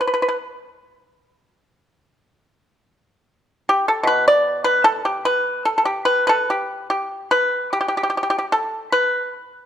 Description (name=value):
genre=chinese traditional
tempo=71-79 BPM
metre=2/4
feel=rubato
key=unclear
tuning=A4 = 440 Hz
part: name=pipa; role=solo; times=0.0-0.4, 3.7-9.7 s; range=B2 to D5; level=-17 LUFS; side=equal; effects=none
room=moderate recital hall reverb, RT60 1.6 s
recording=none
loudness=-17 LUFS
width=side -10 dB against mid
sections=0.0-7.3 A section; 7.3-9.7 B section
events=none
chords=none